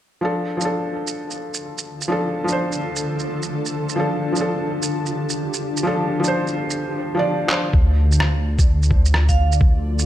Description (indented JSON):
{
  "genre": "future garage",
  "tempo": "128 BPM",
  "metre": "4/4",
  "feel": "swing 63% on 16ths",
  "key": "D minor",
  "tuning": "A4 = 441 Hz",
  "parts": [
    { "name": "felt-muted upright piano", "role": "accompaniment", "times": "0.2-7.8 s", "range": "F3 to D5", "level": "-23 LUFS", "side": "equal", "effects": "sidechain pumping, analog delay" },
    { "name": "granular cloud pad", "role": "sustained chords", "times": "1.6-10.1 s", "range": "D3 to A5", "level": "-27 LUFS", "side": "left 1 dB", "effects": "built-in reverb, sidechain pumping" },
    { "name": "electronic shaker, handclaps and rim click", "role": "drums", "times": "0.6-10.1 s", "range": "none", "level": "-25 LUFS", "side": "right 2 dB", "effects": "none" },
    { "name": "dark detuned saw bass", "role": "bass", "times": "7.7-10.1 s", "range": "D2", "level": "-17 LUFS", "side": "equal", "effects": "sidechain pumping" },
    { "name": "electronic kick drum", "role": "drums", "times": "7.7-9.7 s", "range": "none", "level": "-16 LUFS", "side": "equal", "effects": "none" },
    { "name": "vibraphone with hard mallets", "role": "melody", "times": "9.3-9.5 s", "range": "F5", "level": "-26 LUFS", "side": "right 8 dB", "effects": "analog delay" }
  ],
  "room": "moderate recital hall reverb, RT60 1.4 s",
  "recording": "none",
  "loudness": "-18 LUFS",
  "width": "side -12 dB against mid",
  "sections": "0.2-7.7 A section; 7.7-10.1 B section",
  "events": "fade-in on ambient pad 0.2-7.7; drum fill 7.5",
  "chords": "0.2 Dm"
}